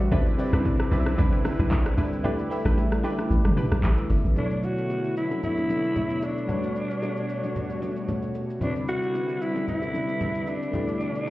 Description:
amapiano; 113 BPM; 4/4; swing 55% on 16ths; B phrygian; A4 = 440 Hz
barking FM electric piano; accompaniment; 0.0-11.3 s; B2 to B5; -32 LUFS; left 1 dB; chorus, phaser
warm analog pad; sustained chords; 0.0-11.3 s; B2 to C#5; -30 LUFS; equal; chorus, tremolo
hollow log drum bass; bass; 0.0-4.4 s; G1 to C2; -23 LUFS; equal
deep house drum kit; drums; 0.0-11.3 s; handclaps, hi-hat, kick drum, rim click, shaker, toms; -27 LUFS; equal; overdrive
analog pluck; stabs; 0.1-3.7 s; D4 to B4; -34 LUFS; equal; chorus, digital delay
congas and bongos; percussion; 0.1-11.3 s; -33 LUFS; left 1 dB
raspy alto saxophone; melody; 4.4-11.3 s; D4 to F#4; -29 LUFS; equal; digital delay
light reverb, digital ambience; heard muffled through a wall, stone room reverb, EQ; -23 LUFS; side -17 dB against mid
0.0-4.4 A section; 4.4-11.3 B section
drop 0.0-4.4; kick muted 2.2-4.4; FM electric piano fill 3.6-4.4
0.1 Cmaj9; 2.2 A9sus4; 4.4 Bm11; 6.5 Gmaj9#11; 8.6 Cmaj9; 10.7 A9sus4

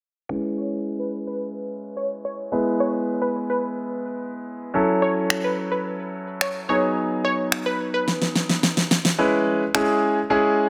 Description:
dance-pop; 108 BPM; 4/4; straight; C# minor; A4 = 441 Hz
clear concert grand piano; accompaniment; 0.3-10.7 s; F#3 to B4; -25 LUFS; equal; low-pass filter
analog pluck; melody; 0.6-8.3 s; B4 to C#5; -30 LUFS; equal; chorus, low-pass filter, digital delay
electronic finger snaps and snare drum; drums; 5.3-9.9 s; -24 LUFS; equal
light reverb, studio reverb; -23 LUFS; mono
0.3-9.2 A section; 9.2-10.7 B section
filter sweep 0.3-9.2; drum fill 8.1-9.2
0.3 C#m7; 2.5 E; 4.7 F#m7; 6.7 G#m7; 9.2 C#m7

